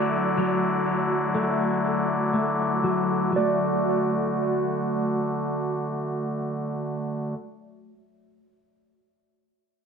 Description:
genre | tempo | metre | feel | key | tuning
dream pop | 58-64 BPM | 4/4 | straight | D major | A4 = 440 Hz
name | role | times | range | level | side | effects
mellow electric guitar | melody | 0.0-7.4 s | D5 | -31 LUFS | right 5 dB | low-pass filter, dub echo
pipe organ, soft reed | sustained chords | 0.0-7.3 s | D3 to D5 | -26 LUFS | left 1 dB | low-pass filter
electric guitar at the edge of break-up | arpeggios | 0.0-7.4 s | F#3 to D4 | -26 LUFS | left 1 dB | ensemble chorus, low-pass filter, dub echo
room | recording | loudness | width
wet spring reverb, RT60 1.1 s, small room ambience | echo-heavy mix | -23 LUFS | side -6 dB against mid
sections
0.0-3.4 A section; 3.4-7.5 B section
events
slowing down 0.0-3.4; filter sweep 0.0-3.4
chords
0.0 D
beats
0.38 1.34 2.33 | 3.35 4.39 5.43 6.47

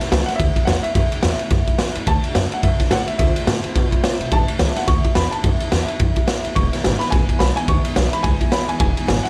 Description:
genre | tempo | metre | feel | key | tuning
rockabilly | 214 BPM | 4/4 | swing 60% on 8ths | A major | A4 = 440 Hz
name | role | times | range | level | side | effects
warm upright piano | melody | 0.0-9.3 s | E5 to C#6 | -27 LUFS | equal | none
picked steel-string acoustic guitar | accompaniment | 0.0-9.3 s | E2 to F#4 | -29 LUFS | equal | none
upright bass | bass | 0.0-9.3 s | E1 to C3 | -24 LUFS | equal | none
raw garage drum kit | drums | 0.0-9.3 s | kick drum, ride cymbal, snare drum | -21 LUFS | equal | none
room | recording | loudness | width
studio ambience | none | -19 LUFS | mono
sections
0.0-9.3 A section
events
none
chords
0.0 A; 2.1 D; 3.2 Dm7; 4.3 A; 6.6 E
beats
0.11 0.39 0.67 | 0.95 1.24 1.52 1.80 | 2.08 2.36 2.64 2.92 | 3.20 3.48 3.76 4.04 | 4.32 4.60 4.88 5.16 | 5.44 5.72 6.00 6.29 | 6.57 6.85 7.13 7.41 | 7.69 7.97 8.25 8.53 | 8.81 9.09

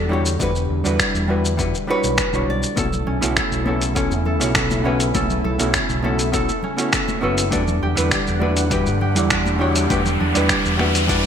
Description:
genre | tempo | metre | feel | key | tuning
sunset chillout | 101 BPM | 4/4 | straight | E dorian | A4 = 439 Hz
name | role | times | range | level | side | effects
nylon-string guitar | melody | 0.0-2.8 s | G4 to D5 | -26 LUFS | equal | digital delay
hollow-body jazz guitar | accompaniment | 0.0-11.3 s | G3 to F#5 | -23 LUFS | moving between left 3 dB and right 4 dB | auto-pan, digital delay
lush unison pad | sustained chords | 0.0-11.3 s | C#3 to F#5 | -27 LUFS | equal | chorus
overdriven fingered electric bass | bass | 0.0-11.2 s | F#1 to G2 | -23 LUFS | equal | none
dusty soul sampler-style drum kit | drums | 0.3-11.2 s | finger snaps, hi-hat, shaker | -23 LUFS | equal | gated reverb
electronic kick drum | drums | 0.4-11.2 s | none | -28 LUFS | equal | overdrive
concert harp | arpeggios | 2.8-11.3 s | C#4 to A4 | -26 LUFS | right 1 dB | digital delay
congas | percussion | 2.8-11.3 s | none | -30 LUFS | left 2 dB | none
riser | sound effects | 8.7-11.3 s | none | -25 LUFS | equal | none
room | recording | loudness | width
moderate plate reverb, RT60 1.8 s | bright 1980s-style digital production | -17 LUFS | side -8 dB against mid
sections
0.0-11.3 A section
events
riser 8.7-11.3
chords
0.0 Em9; 2.8 B9sus4; 7.5 Em9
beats
| 0.40 0.99 1.59 2.18 | 2.77 3.37 3.96 4.56 | 5.15 5.75 6.34 6.93 | 7.53 8.12 8.71 9.31 | 9.90 10.50 11.09

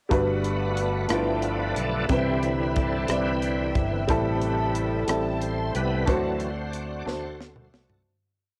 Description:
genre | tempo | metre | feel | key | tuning
slow gospel | 60 BPM (dotted quarters) | 6/8 | straight | G major | A4 = 441 Hz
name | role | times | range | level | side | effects
warm upright piano | accompaniment | 0.1-8.1 s | G2 to D5 | -29 LUFS | equal | none
bright tonewheel organ | sustained chords | 0.1-8.0 s | C3 to D5 | -33 LUFS | equal | slow rotary speaker, chorus vibrato
warm studio string section | sustained chords | 0.1-8.1 s | D5 to B5 | -38 LUFS | equal | none
fingered electric bass | bass | 0.1-8.0 s | G1 to D2 | -33 LUFS | equal | none
crisp fusion drum kit | drums | 0.1-8.1 s | hi-hat, kick drum, rim click, snare drum, toms | -32 LUFS | equal | cassette tape
room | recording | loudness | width
small room ambience | home recording on cassette | -26 LUFS | mono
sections
0.1-8.1 verse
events
tonewheel organ solo 0.1-8.1; fade-out 6.1-8.1; drum fill 7.1-8.1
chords
0.1 Gmaj7; 1.1 G13; 2.1 Cmaj7; 4.1 Am7; 6.1 D7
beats
| 0.11 1.10 | 2.10 3.09 | 4.09 5.08 | 6.08 7.07

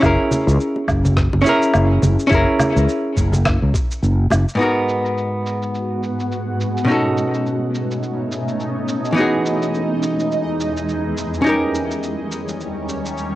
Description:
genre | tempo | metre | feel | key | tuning
sunset chillout | 105 BPM | 4/4 | swing 58% on 16ths | G# minor | A4 = 441 Hz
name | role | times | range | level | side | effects
archtop guitar, miked and amplified | accompaniment | 0.0-13.4 s | G#2 to A#4 | -19 LUFS | equal | auto-pan, cassette tape, tape echo
fretless electric bass | bass | 0.0-4.4 s | F#1 to C#2 | -16 LUFS | equal | lush chorus
electronic kick drum | drums | 0.0-3.9 s | none | -22 LUFS | equal | studio reverb
electronic woodblock, cabasa and rim click | drums | 0.0-13.3 s | none | -25 LUFS | right 1 dB | low-pass filter on perc, studio reverb, low-pass filter on snare
congas and bongos | percussion | 0.3-4.4 s | none | -24 LUFS | left 1 dB | none
shimmering ambient pad | sustained chords | 5.5-13.4 s | D#2 to F#4 | -22 LUFS | right 1 dB | chorus, built-in reverb, phaser, cassette tape
room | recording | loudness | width
moderate booth ambience, RT60 0.2 s | home recording on cassette | -16 LUFS | side -16 dB against mid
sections
0.0-4.6 A section; 4.6-13.4 B section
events
filter sweep on ambient pad 4.6-13.4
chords
0.0 F#7; 4.6 G#m7; 6.9 B9; 9.2 Emaj7; 11.5 D#7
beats
| 0.03 0.60 1.17 1.74 | 2.31 2.88 3.46 4.03 | 4.60 5.17 5.74 6.31 | 6.88 7.46 8.03 8.60 | 9.17 9.74 10.31 10.88 | 11.46 12.03 12.60 13.17

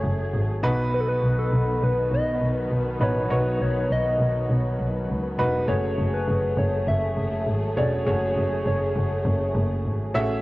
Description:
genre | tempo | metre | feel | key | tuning
pop | 101 BPM | 4/4 | straight | F# minor | A4 = 440 Hz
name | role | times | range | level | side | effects
clear upright piano | accompaniment | 0.0-10.4 s | B2 to E5 | -27 LUFS | right 1 dB | cassette tape
dark studio string section | sustained chords | 0.0-10.4 s | D#3 to G#4 | -31 LUFS | left 1 dB | cassette tape
rich double bass | bass | 0.0-10.4 s | E1 to C#2 | -25 LUFS | equal | none
soft struck synth lead | melody | 0.9-9.5 s | A4 to E5 | -27 LUFS | left 1 dB | chorus, cassette tape
room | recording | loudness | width
moderate spring reverb, RT60 2.9 s | home recording on cassette, lossy compression artefacts | -21 LUFS | side -19 dB against mid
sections
0.0-10.4 A section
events
none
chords
0.0 F#madd9; 0.6 B; 5.7 F#madd9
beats
0.33 | 0.93 1.52 2.12 2.71 | 3.31 3.90 4.50 5.09 | 5.68 6.28 6.87 7.47 | 8.06 8.66 9.25 9.85

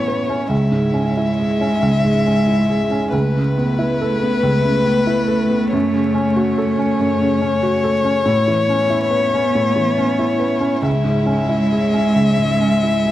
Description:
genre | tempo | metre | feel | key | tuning
neoclassical piano and strings | 93 BPM | 4/4 | rubato | unclear | A4 = 440 Hz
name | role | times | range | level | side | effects
warm violin | melody | 0.0-13.1 s | B4 to E5 | -20 LUFS | left 4 dB | none
rich cello | second line | 0.0-13.1 s | G#3 to B3 | -20 LUFS | right 2 dB | none
felt-muted upright piano | accompaniment | 0.0-13.1 s | C#2 to B4 | -19 LUFS | right 1 dB | none
rich chamber string section | sustained chords | 0.0-13.1 s | G#3 to C#5 | -28 LUFS | left 1 dB | none
room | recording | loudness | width
moderate spring reverb, RT60 1.8 s, small room ambience | dark, warm production, vinyl crackle | -15 LUFS | side -13 dB against mid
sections
0.0-13.1 A section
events
none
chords
0.0 Aadd9; 0.5 C#m; 3.1 Aadd9/C#; 5.7 F#m; 8.3 Aadd9; 10.9 C#m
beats
| 0.52 1.17 1.82 2.48 | 3.13 3.78 4.43 5.07 | 5.71 6.36 7.00 7.64 | 8.29 8.93 9.56 10.21 | 10.86 11.50 12.15 12.82

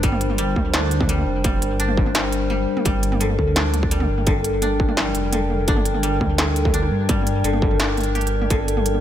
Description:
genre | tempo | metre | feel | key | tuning
half-time drum and bass | 170 BPM | 4/4 | half-time | G minor | A4 = 440 Hz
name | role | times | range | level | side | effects
dark analog pad | sustained chords | 0.0-9.0 s | G3 to G5 | -25 LUFS | left 2 dB | wide subtle chorus, sidechain pumping
koto | arpeggios | 0.0-9.0 s | D3 to G4 | -26 LUFS | equal | tape echo
dark detuned saw bass | bass | 0.0-9.0 s | F1 to G2 | -23 LUFS | equal | none
electronic kick drum | drums | 0.0-8.6 s | none | -22 LUFS | equal | distortion, overdrive
industrial drum kit | drums | 0.0-9.0 s | hi-hat, snare drum, toms | -25 LUFS | right 1 dB | overdrive
metallic inharmonic drone | texture | 3.9-9.0 s | D4 | -32 LUFS | equal | chorus, built-in reverb
room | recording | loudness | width
light reverb, digital ambience | none | -18 LUFS | side -11 dB against mid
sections
0.0-9.0 A section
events
none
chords
0.0 Gm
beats
| 0.03 0.39 0.74 1.09 | 1.44 1.80 2.15 2.50 | 2.85 3.21 3.56 3.91 | 4.27 4.62 4.97 5.33 | 5.68 6.03 6.38 6.74 | 7.09 7.44 7.80 8.15 | 8.50 8.86

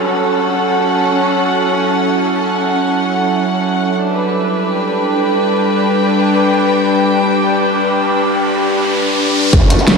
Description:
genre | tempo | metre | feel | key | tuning
dark technical drum and bass | free time | none | none | unclear | A4 = 440 Hz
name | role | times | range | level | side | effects
metallic inharmonic drone | sustained chords | 0.0-10.0 s | F#3 to B4 | -16 LUFS | equal | chorus, built-in reverb, sidechain pumping
downlifter and riser | sound effects | 0.0-1.2, 7.8-9.5 s | none | -22 LUFS | right 1 dB | none
warm chamber string section | texture | 0.0-10.0 s | C#4 to G5 | -16 LUFS | equal | sidechain pumping
growl bass | bass | 9.5-10.0 s | F#1 | -15 LUFS | equal | chorus, overdrive
dubstep drum kit | drums | 9.5-9.9 s | hi-hat, rim click, snare drum, tambourine | -13 LUFS | equal | low-pass filter on hats, studio reverb, low-pass filter on cymbals, low-pass filter on snare, low-pass filter on perc
electronic kick drum | drums | 9.5-9.6 s | none | -10 LUFS | equal | studio reverb
room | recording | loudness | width
moderate lush hall reverb, RT60 2.3 s | played on a big sound system in a bare room, large studio reverb | -12 LUFS | side -4 dB against mid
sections
0.0-9.5 A section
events
filter sweep on drum 0.0-9.5; riser 7.8-9.5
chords
0.0 F#m; 4.0 G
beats
free time

